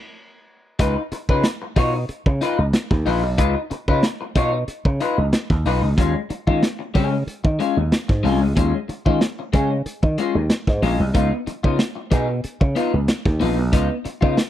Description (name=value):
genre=funk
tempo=93 BPM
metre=4/4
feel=straight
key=unclear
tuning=A4 = 439 Hz
part: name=electric guitar at the edge of break-up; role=accompaniment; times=0.8-14.4 s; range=Ab3 to Db5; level=-23 LUFS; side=left 4 dB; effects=lush chorus
part: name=slap bass with an envelope filter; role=bass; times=0.8-14.4 s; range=Bb1 to Eb3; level=-21 LUFS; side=right 1 dB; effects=none
part: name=crunchy breakbeat drum kit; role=drums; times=0.8-14.5 s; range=hi-hat, kick drum, snare drum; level=-20 LUFS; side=right 1 dB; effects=none
room=small room reverb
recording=dry, close 1970s-style studio recording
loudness=-18 LUFS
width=side -12 dB against mid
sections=0.8-14.5 A section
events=break 0.0-0.8; band accent 0.0-0.8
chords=0.0 N.C.; 0.8 Db9; 6.0 Eb9sus4; 11.2 Db9